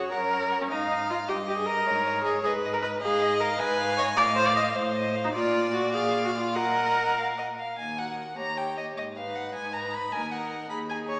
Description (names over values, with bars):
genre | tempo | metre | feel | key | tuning
quick classical-period movement for string quartet | 103 BPM (dotted quarters) | 6/8 | straight | Eb minor from 3.0 s | A4 = 440 Hz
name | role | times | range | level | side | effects
rich violin | second line | 0.0-11.2 s | Ab4 to Ab5 | -31 LUFS | equal | none
clear viola | accompaniment | 0.0-11.2 s | C#4 to Eb5 | -26 LUFS | equal | none
rich cello | bass | 0.0-11.2 s | Eb2 to Bb2 | -36 LUFS | equal | none
rich violin | melody | 0.1-11.2 s | Db5 to Cb6 | -33 LUFS | left 1 dB | none
room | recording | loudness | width
wet recital hall reverb, RT60 1.5 s | recorded in a church or concert hall, small speaker sound | -24 LUFS | side -26 dB against mid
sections
0.0-7.8 A section; 7.8-11.2 B section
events
none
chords
0.0 F#; 0.7 G#5; 1.3 D#/G; 1.9 G#m; 3.0 Fm7b5/Ab; 4.2 F7/A; 5.3 Bb; 6.6 Ebm/Bb; 7.8 Ebm; 8.4 Eb7; 9.0 Abm; 10.1 Ebm